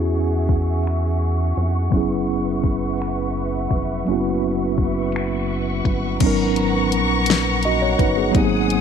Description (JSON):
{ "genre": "slow six-eight R&B", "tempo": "56 BPM (dotted quarters)", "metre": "6/8", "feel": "straight", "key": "G# minor", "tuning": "A4 = 441 Hz", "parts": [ { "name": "mellow tine electric piano", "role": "accompaniment", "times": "0.0-8.8 s", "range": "F#3 to D#5", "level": "-21 LUFS", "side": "right 1 dB", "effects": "medium stereo tremolo" }, { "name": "muted studio string section", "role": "sustained chords", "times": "0.0-8.8 s", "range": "B3 to D#6", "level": "-26 LUFS", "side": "equal", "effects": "none" }, { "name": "rubbery square bass", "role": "bass", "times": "0.0-8.8 s", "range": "E#1 to E#2", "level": "-24 LUFS", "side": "equal", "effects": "none" }, { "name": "smooth R&B drum kit", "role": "drums", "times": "0.5-8.8 s", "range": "crash cymbal, finger snaps, hi-hat, kick drum, snare drum", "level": "-22 LUFS", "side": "left 3 dB", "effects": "none" } ], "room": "digital ambience", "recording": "1960s-style stereo, low-pass filter", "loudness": "-18 LUFS", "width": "side -7 dB against mid", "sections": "0.0-6.2 A section; 6.2-8.8 B section", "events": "filter sweep 0.0-6.2", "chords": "0.0 E69; 1.9 F#7sus4; 6.2 G#m11" }